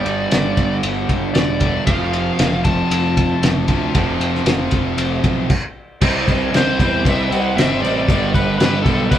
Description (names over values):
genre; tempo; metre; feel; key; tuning
classic rock; 116 BPM; 4/4; straight; unclear; A4 = 440 Hz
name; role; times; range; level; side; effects
bluesy overdriven lead guitar; melody; 0.0-9.2 s; A4 to A5; -24 LUFS; left 1 dB; distortion
crunchy overdriven guitar; riff; 0.0-9.2 s; F2 to C4; -21 LUFS; right 5 dB; none
overdriven electric guitar; riff; 0.0-9.2 s; F2 to C4; -25 LUFS; left 6 dB; none
fuzz picked electric bass; bass; 0.1-9.2 s; E1 to F2; -23 LUFS; left 1 dB; overdrive
cloth-damped thuddy drum kit; drums; 0.1-9.2 s; crash cymbal, kick drum, ride cymbal, snare drum; -18 LUFS; equal; none
fuzz guitar; riff; 1.9-5.5 s; F2 to F4; -26 LUFS; left 2 dB; none
room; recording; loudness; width
moderate studio reverb, RT60 0.9 s; band playing live in one room; -15 LUFS; side -11 dB against mid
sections
0.0-6.0 A section; 6.0-9.2 B section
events
stop 5.5-6.0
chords
0.0 G5; 1.9 F; 6.0 C; 8.1 G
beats
0.31 0.83 1.35 | 1.87 2.39 2.91 3.43 | 3.94 4.46 4.98 5.50 | 6.02 6.53 7.05 7.57 | 8.09 8.60 9.12